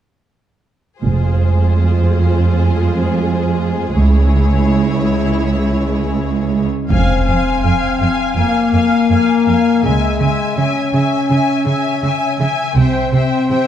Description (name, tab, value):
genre	cinematic, epic orchestral film score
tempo	82 BPM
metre	4/4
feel	straight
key	F harmonic minor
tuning	A4 = 440 Hz
part	warm symphonic violin section	second line	1.0-13.7 s	Ab4 to Ab5	-23 LUFS	left 5 dB	none
part	warm symphonic viola section	accompaniment	1.0-13.7 s	Ab3 to F5	-22 LUFS	equal	none
part	warm symphonic cello section	bass	1.0-13.6 s	Db2 to Db3	-16 LUFS	right 2 dB	none
part	warm symphonic double bass section	bass	1.0-13.1 s	F1 to Db2	-17 LUFS	right 2 dB	none
part	warm symphonic violin section	melody	6.9-13.7 s	G5 to Ab5	-27 LUFS	left 3 dB	none
part	warm French horn section	sustained chords	6.9-13.7 s	Ab3 to Db4	-16 LUFS	left 4 dB	none
part	impact	sound effects	6.9-9.8 s	none	-21 LUFS	equal	none
room	moderate scoring stage reverb, RT60 2.1 s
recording	dark, warm production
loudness	-13 LUFS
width	side -10 dB against mid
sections	1.0-6.9 A section; 6.9-13.7 B section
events	impact 6.9-9.8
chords	1.0 Fm; 4.0 Dbm; 6.9 Fm; 9.8 Dbm; 12.8 C